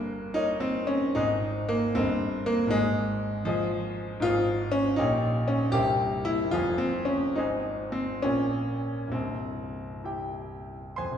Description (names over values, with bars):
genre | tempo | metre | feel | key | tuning
classical, romantic character piece for solo piano | 62-82 BPM (dotted quarters) | 6/8 | rubato | Ab major | A4 = 440 Hz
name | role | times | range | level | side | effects
clear concert grand piano | solo | 0.0-11.2 s | C1 to C6 | -25 LUFS | equal | none
room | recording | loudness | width
wet recital hall reverb, RT60 1.5 s | minimal, uncompressed stereo recording | -25 LUFS | side -8 dB against mid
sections
0.0-11.0 A section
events
none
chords
0.0 Eb7/G; 1.2 Ab; 2.0 Eb/G; 2.7 Ab; 4.2 Fm/Ab; 5.0 Gm7b5/Bb; 5.8 C7; 6.5 Fm; 7.4 Ab; 8.2 Bbm7; 9.1 C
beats
0.36 | 1.17 1.96 | 2.73 3.47 | 4.23 4.99 | 5.76 6.55 | 7.37 8.23 | 9.13 10.06 | 10.99